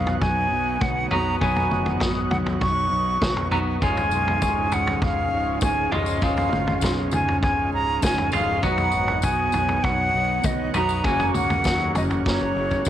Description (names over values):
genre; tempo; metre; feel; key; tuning
psychedelic rock; 100 BPM; 4/4; straight; unclear; A4 = 441 Hz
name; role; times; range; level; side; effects
bright silver concert flute; melody; 0.0-12.9 s; Db5 to Db6; -24 LUFS; equal; tape echo
combo organ; sustained chords; 0.0-12.9 s; Ab3 to Gb5; -35 LUFS; right 14 dB; none
twangy electric guitar; riff; 0.0-12.9 s; Db2 to Cb5; -26 LUFS; equal; phaser
fuzz fingered electric bass; bass; 0.0-12.9 s; Db1 to Eb2; -29 LUFS; equal; overdrive
vintage drum kit; drums; 0.1-12.9 s; kick drum, snare drum, toms; -25 LUFS; equal; none
tambourine; percussion; 3.8-12.9 s; none; -39 LUFS; left 18 dB; none
room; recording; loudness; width
light reverb, small room ambience; 1960s-style stereo with parts hard left and right; -20 LUFS; side -11 dB against mid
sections
0.0-12.9 A section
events
drum fill 12.3-12.9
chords
0.0 Cbadd9; 3.8 Db; 8.6 Cbadd9; 11.1 Gb